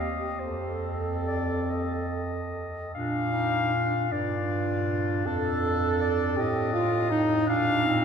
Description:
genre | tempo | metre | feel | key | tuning
classical, lyrical piece for single-reed quartet | 47-54 BPM (dotted quarters) | 6/8 | rubato | Bb major | A4 = 440 Hz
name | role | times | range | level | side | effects
mellow clarinet | melody | 0.0-8.0 s | A4 to F5 | -30 LUFS | left 5 dB | none
mellow alto saxophone | second line | 0.0-8.0 s | D4 to A4 | -30 LUFS | right 5 dB | none
warm clarinet | accompaniment | 0.0-8.0 s | C4 to F4 | -33 LUFS | left 2 dB | none
warm bass clarinet | bass | 0.0-8.0 s | F2 to Bb2 | -30 LUFS | right 1 dB | none
room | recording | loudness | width
wet cathedral reverb, RT60 6.1 s | recorded in a church or concert hall | -25 LUFS | side -7 dB against mid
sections
0.0-2.9 A section; 2.9-8.0 B section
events
none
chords
0.4 F; 2.9 Bb; 5.3 F7; 7.5 Bb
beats
| 0.40 1.68 | 2.92 4.09 | 5.25 6.38 | 7.49

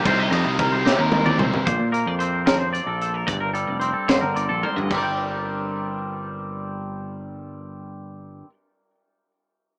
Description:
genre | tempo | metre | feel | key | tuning
math rock and midwest emo | 74 BPM (dotted quarters) | 6/8 | straight | G minor | A4 = 439 Hz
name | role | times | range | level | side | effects
twangy electric guitar | arpeggios | 0.0-8.5 s | G4 to G5 | -28 LUFS | equal | subtle chorus, tape echo
cranked stack guitar | riff | 0.0-1.7 s | C3 to Eb4 | -26 LUFS | equal | overdrive
overdriven picked electric bass | bass | 0.1-8.4 s | F1 to C3 | -30 LUFS | equal | none
crisp fusion drum kit | drums | 0.1-5.0 s | crash cymbal, hi-hat, kick drum, ride cymbal, snare drum, toms | -26 LUFS | equal | none
twangy electric guitar | accompaniment | 1.7-8.5 s | G2 to D5 | -30 LUFS | equal | none
room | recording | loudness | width
small room ambience | rough home demo mix, small speaker sound | -23 LUFS | mono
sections
0.0-1.7 A section; 1.7-4.9 B section; 4.9-8.2 C section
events
drum fill 0.9-1.7, 4.6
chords
0.1 Cm7; 1.7 Bbmaj9; 3.3 Gm11; 4.9 Gmadd11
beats
| 0.05 0.86 | 1.67 2.48 | 3.29 4.10 | 4.91 5.73 | 6.54 7.36

